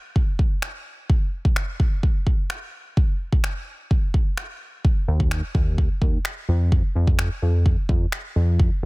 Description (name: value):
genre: dance-pop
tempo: 128 BPM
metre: 4/4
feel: straight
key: unclear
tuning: A4 = 436 Hz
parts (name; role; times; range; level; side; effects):
- deep house drum kit; drums; 0.2-8.7 s; finger snaps, kick drum; -20 LUFS; equal; soft clipping on snare
- chorused synth bass; bass; 5.1-8.9 s; Eb2 to F2; -20 LUFS; equal; sidechain pumping
room: little or no reverb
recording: dense, heavily limited modern master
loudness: -20 LUFS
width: side -24 dB against mid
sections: 0.0-8.9 A section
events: none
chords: none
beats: 0.16 0.63 | 1.10 1.56 2.03 2.50 | 2.97 3.44 3.91 4.38 | 4.85 5.32 5.78 6.25 | 6.72 7.19 7.66 8.13 | 8.60